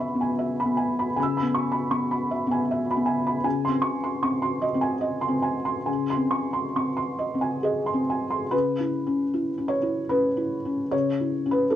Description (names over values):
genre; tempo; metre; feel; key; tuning
neoclassical minimalist piano; 67-80 BPM; 3/4; rubato; C# minor; A4 = 441 Hz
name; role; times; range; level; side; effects
felt-muted upright piano; solo; 0.0-11.8 s; C#3 to E6; -23 LUFS; equal; none
room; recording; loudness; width
light reverb; worn, warbling old tape, cassette tape, warbly pitch drift; -23 LUFS; side -11 dB against mid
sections
0.0-8.5 A section; 8.5-11.8 B section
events
none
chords
0.0 C#m7; 3.4 G#/C#; 8.5 C#m7